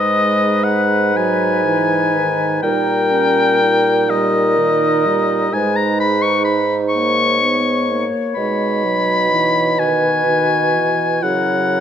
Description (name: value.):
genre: classical, slow romantic movement for wind quintet.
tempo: 42 BPM (dotted quarters).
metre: 6/8.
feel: rubato.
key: G# minor.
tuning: A4 = 440 Hz.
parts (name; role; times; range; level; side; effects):
mellow concert flute; melody; 0.0-11.8 s; A#4 to C#5; -24 LUFS; left 6 dB; none.
clear oboe; second line; 0.0-11.8 s; D#5 to C#6; -17 LUFS; left 3 dB; none.
dark clarinet; accompaniment; 0.0-11.8 s; C#4 to F#4; -24 LUFS; right 9 dB; none.
mellow French horn; accompaniment; 0.0-11.8 s; D#3 to B3; -24 LUFS; equal; none.
warm bassoon; bass; 0.0-11.8 s; G#2 to C#3; -19 LUFS; right 3 dB; none.
room: moderate recital hall reverb, RT60 1.5 s.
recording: none.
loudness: -14 LUFS.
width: side -9 dB against mid.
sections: 0.0-11.8 A section.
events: none.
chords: 0.0 G#m; 2.6 D#7/A#; 5.5 G#m; 8.4 G#m/B; 11.2 F#7/C#.